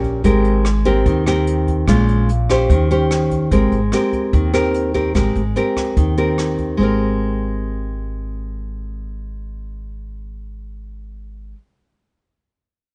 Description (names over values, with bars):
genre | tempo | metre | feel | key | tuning
bossa nova | 147 BPM | 4/4 | straight | Ab major | A4 = 440 Hz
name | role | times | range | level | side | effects
nylon-string guitar | accompaniment | 0.0-11.6 s | Bb2 to C5 | -20 LUFS | equal | none
upright bass | bass | 0.0-11.5 s | Ab1 to Eb2 | -23 LUFS | equal | none
jazz brush drum kit | drums | 0.0-6.7 s | hi-hat, kick drum, rim click | -26 LUFS | equal | none
room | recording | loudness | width
little or no reverb | nothing above 10.3 kHz | -17 LUFS | mono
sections
0.0-3.5 A section; 3.5-6.8 B section; 6.8-10.1 C section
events
none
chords
0.2 Abmaj9; 1.9 Bbm7; 2.7 Eb6; 3.5 Abmaj9